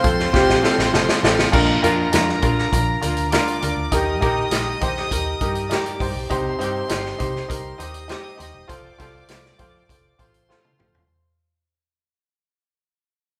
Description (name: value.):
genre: uptempo 1960s-style soul.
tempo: 100 BPM.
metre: 4/4.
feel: straight.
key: Bb major.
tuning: A4 = 440 Hz.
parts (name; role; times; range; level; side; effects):
warm studio violin section; second line; 0.0-11.1 s; Bb4 to Eb6; -30 LUFS; equal; none.
clear upright piano; accompaniment; 0.0-11.0 s; Bb2 to C5; -24 LUFS; equal; none.
vintage muted fingered electric bass; bass; 0.0-11.0 s; E1 to Eb3; -30 LUFS; equal; none.
vintage drum kit; drums; 0.0-11.1 s; crash cymbal, hi-hat, kick drum, snare drum, toms; -24 LUFS; equal; none.
clear saxophone section; second line; 1.8-10.9 s; C3 to G4; -34 LUFS; equal; none.
room: wet large studio reverb, RT60 1.3 s.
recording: band playing live in one room.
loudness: -20 LUFS.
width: mono.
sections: 0.0-1.5 A section; 1.5-11.1 B section.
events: drum fill 0.3-1.5, 10.5-11.1; fade-out 1.5-11.1.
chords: 0.0 F; 1.5 Bb; 3.9 Eb; 6.3 Cm; 8.7 F.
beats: 0.34 0.93 | 1.53 2.13 2.72 3.32 | 3.92 4.51 5.11 5.71 | 6.30 6.90 7.50 8.10 | 8.69 9.29 9.89 10.49.